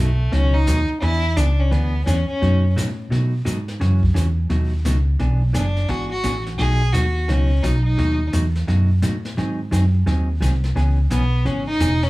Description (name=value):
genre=country, western swing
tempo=173 BPM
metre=4/4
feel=swing 64% on 8ths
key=B mixolydian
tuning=A4 = 440 Hz
part: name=rich fiddle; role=melody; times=0.0-2.7, 5.5-8.3, 11.1-12.1 s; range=A3 to G#4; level=-24 LUFS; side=left 1 dB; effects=none
part: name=hollow-body jazz guitar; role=accompaniment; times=0.0-11.9 s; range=B2 to G#4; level=-26 LUFS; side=right 1 dB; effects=none
part: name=woody fretless electric bass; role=bass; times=0.0-12.1 s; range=E1 to B2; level=-18 LUFS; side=equal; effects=none
part: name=jazz brush drum kit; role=drums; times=0.3-12.1 s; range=brushed snare drum, hi-hat, kick drum, snare drum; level=-29 LUFS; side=equal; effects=none
room=little or no reverb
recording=small room ambience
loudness=-17 LUFS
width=side -19 dB against mid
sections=0.0-12.1 A section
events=none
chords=0.0 B9; 1.0 E7; 2.4 B9; 3.8 F#m7; 4.5 B9; 5.2 E9; 6.6 B9; 9.4 G#7; 10.8 C#m7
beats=0.32 0.67 | 1.02 1.37 1.72 2.06 | 2.41 2.76 3.11 3.46 | 3.81 4.15 4.50 4.85 | 5.20 5.54 5.89 6.24 | 6.59 6.93 7.28 7.63 | 7.98 8.32 8.67 9.02 | 9.37 9.71 10.06 10.41 | 10.76 11.10 11.45 11.80